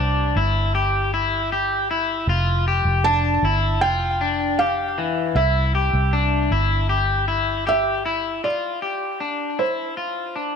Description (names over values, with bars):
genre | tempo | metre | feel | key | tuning
dream pop | 78 BPM | 4/4 | straight | unclear | A4 = 440 Hz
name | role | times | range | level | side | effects
felt-muted upright piano | melody | 0.0-10.6 s | C5 to A5 | -24 LUFS | right 4 dB | ping-pong delay
electric guitar at the edge of break-up | arpeggios | 0.0-10.6 s | E3 to G4 | -22 LUFS | left 4 dB | wide subtle chorus, ping-pong delay
vintage muted fingered electric bass | bass | 0.0-8.4 s | F1 to C2 | -22 LUFS | right 1 dB | none
room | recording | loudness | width
light reverb, small room ambience | none | -19 LUFS | side -6 dB against mid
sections
0.0-8.4 A section; 8.4-10.6 B section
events
none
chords
0.0 C; 2.3 Fadd9; 5.4 C; 8.4 Dm11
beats
0.74 1.51 | 2.28 3.05 3.82 4.59 | 5.36 6.13 6.90 7.67 | 8.44 9.21 9.97